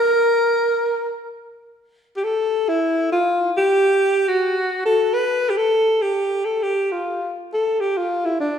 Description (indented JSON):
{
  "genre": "jazz",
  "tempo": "free time",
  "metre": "none",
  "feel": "none",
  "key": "unclear",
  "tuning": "A4 = 440 Hz",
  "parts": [
    { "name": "breathy alto saxophone", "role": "solo", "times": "0.0-8.6 s", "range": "D4 to B4", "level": "-17 LUFS", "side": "equal", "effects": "none" }
  ],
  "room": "wet recital hall reverb, RT60 1.5 s",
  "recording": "recorded in a church or concert hall",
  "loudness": "-17 LUFS",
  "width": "side -8 dB against mid",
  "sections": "0.0-5.3 A section; 5.3-8.6 B section",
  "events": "none",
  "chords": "none"
}